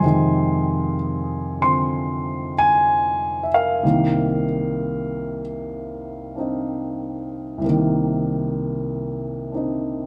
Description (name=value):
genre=solo jazz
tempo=63 BPM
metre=4/4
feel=swing 67% on 8ths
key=C minor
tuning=A4 = 440 Hz
part: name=dark baby grand piano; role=solo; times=0.0-10.1 s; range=C2 to C6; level=-22 LUFS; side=equal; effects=none
room=moderate stone room reverb, RT60 1.5 s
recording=band playing live in one room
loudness=-22 LUFS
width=mono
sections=0.0-10.1 A section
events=none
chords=0.0 Fm7; 3.8 Cm7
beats=| 0.03 0.98 1.93 2.88 | 3.83 4.78 5.73 6.68 | 7.63 8.58 9.53